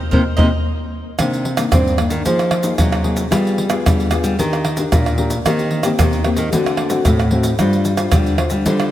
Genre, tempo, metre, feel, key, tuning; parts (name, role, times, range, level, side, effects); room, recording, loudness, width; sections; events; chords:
samba and choro; 112 BPM; 4/4; straight; C minor; A4 = 440 Hz
cavaquinho; accompaniment; 0.1-0.5 s; Bb4 to Eb5; -26 LUFS; right 3 dB
nylon-string guitar; accompaniment; 0.1-8.9 s; G2 to C5; -20 LUFS; left 3 dB
nylon-string guitar; bass; 0.1-8.9 s; G2 to C4; -20 LUFS; equal
surdo, tube shaker, pandeiro and tamborim; percussion; 0.1-8.9 s; -18 LUFS; right 1 dB
moderate lush hall reverb, RT60 2.8 s; dreamy mix soaked in reverb; -14 LUFS; side -12 dB against mid
0.0-1.2 A section; 1.2-8.9 B section
band accent 0.0-1.2
0.0 Cm7; 1.2 Cm9; 2.3 Fm7; 3.3 G7b9; 4.4 Ebmaj7; 5.5 Cm7/Eb; 6.5 D7; 7.6 G7sus4